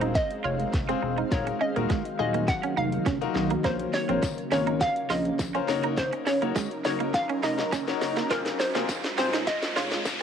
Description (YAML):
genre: dance-pop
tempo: 103 BPM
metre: 4/4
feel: straight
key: Bb minor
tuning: A4 = 441 Hz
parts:
  - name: hollow square pluck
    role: melody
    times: 0.0-10.0 s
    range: Bb4 to Gb5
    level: -30 LUFS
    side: equal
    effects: chorus, tape echo
  - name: bright grand piano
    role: accompaniment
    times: 0.0-10.2 s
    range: C4 to Db5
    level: -32 LUFS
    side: left 11 dB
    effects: sidechain pumping
  - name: shimmering ambient pad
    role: sustained chords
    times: 0.0-10.2 s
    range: Db3 to F5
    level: -31 LUFS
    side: equal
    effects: chorus, built-in reverb, sidechain pumping
  - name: semi-hollow electric guitar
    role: riff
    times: 0.0-9.9 s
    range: Ab3 to F4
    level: -32 LUFS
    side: right 10 dB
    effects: analog chorus
  - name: saturated sub bass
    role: bass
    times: 0.0-10.2 s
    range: Eb1 to Cb2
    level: -34 LUFS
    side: equal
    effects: sidechain pumping
  - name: house drum kit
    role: drums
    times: 0.0-10.2 s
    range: hi-hat, kick drum, shaker, snare drum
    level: -30 LUFS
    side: equal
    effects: cassette tape
  - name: riser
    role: sound effects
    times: 6.1-10.2 s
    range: none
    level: -37 LUFS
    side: right 1 dB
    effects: none
  - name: tambourine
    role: percussion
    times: 4.2-10.2 s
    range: none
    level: -42 LUFS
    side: left 15 dB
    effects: none
room: light reverb, digital ambience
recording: home recording on cassette, high-pass filter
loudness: -24 LUFS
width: side -8 dB against mid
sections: 0.0-10.2 A section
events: build-up 0.0-10.2; drum fill 0.0-10.2; filter sweep 0.0-10.2; riser 6.1-10.2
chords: 0.0 Fm; 1.3 Ebmadd9; 3.6 Bbmadd9; 5.7 Gb6; 8.3 Fm